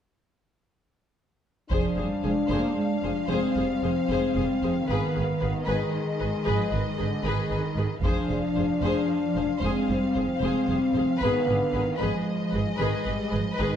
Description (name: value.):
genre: cinematic, epic orchestral film score.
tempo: 76 BPM (dotted quarters).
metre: 12/8.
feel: straight.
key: F dorian.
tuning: A4 = 440 Hz.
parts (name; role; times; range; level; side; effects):
rich studio violin section; melody; 1.7-13.8 s; Eb5 to F5; -37 LUFS; left 3 dB; none.
clear symphonic violin section; second line; 1.7-13.8 s; Cb5 to C5; -34 LUFS; left 3 dB; none.
clear symphonic viola section; accompaniment; 1.7-13.8 s; Ab4; -35 LUFS; left 1 dB; none.
dark French horn section; sustained chords; 1.7-13.8 s; Ab3 to D4; -27 LUFS; left 2 dB; none.
clear symphonic double bass section; bass; 1.7-13.7 s; F1 to Ab1; -30 LUFS; right 3 dB; none.
warm symphonic cello section; bass; 1.7-13.8 s; D3 to Bb3; -31 LUFS; right 3 dB; none.
taiko ensemble; drums; 1.7-2.7, 8.0-9.1 s; none; -30 LUFS; equal; none.
room: wet scoring stage reverb, RT60 1.6 s.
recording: dark, warm production.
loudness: -23 LUFS.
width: side -9 dB against mid.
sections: 1.7-13.8 A section.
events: none.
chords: 1.7 Fm; 4.9 Abm; 8.0 Fm; 11.2 Abm.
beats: | 1.71 2.50 3.29 4.09 | 4.88 5.67 6.46 7.25 | 8.04 8.84 9.63 10.42 | 11.21 12.00 12.79 13.58.